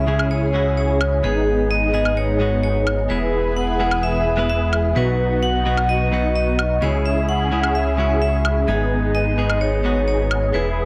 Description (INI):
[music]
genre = EDM, festival progressive house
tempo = 129 BPM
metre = 4/4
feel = straight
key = unclear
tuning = A4 = 440 Hz
[part]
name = vibraphone with medium hard mallets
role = melody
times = 0.0-10.9 s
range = G#4 to F#5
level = -24 LUFS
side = equal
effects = tape echo
[part]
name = direct-recorded clean electric guitar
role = accompaniment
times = 0.0-10.9 s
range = G#2 to B4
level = -28 LUFS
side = equal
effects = none
[part]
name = lush unison pad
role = sustained chords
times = 0.0-10.9 s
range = C#3 to B4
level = -32 LUFS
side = equal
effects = chorus
[part]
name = supersaw chords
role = riff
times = 0.0-10.9 s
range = B3 to G#4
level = -27 LUFS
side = equal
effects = ensemble chorus, cassette tape, low-pass filter, tape echo
[part]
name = fat analog bass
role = bass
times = 0.0-10.9 s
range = E1 to C#2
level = -24 LUFS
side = equal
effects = none
[part]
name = woodblock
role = drums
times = 0.2-10.4 s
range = none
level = -28 LUFS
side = equal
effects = none
[sound]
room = light reverb, digital ambience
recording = none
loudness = -19 LUFS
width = mono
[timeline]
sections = 0.0-10.9 A section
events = none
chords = 0.0 C#m; 1.2 G#m; 3.1 E; 5.0 B; 6.8 C#m; 8.7 G#m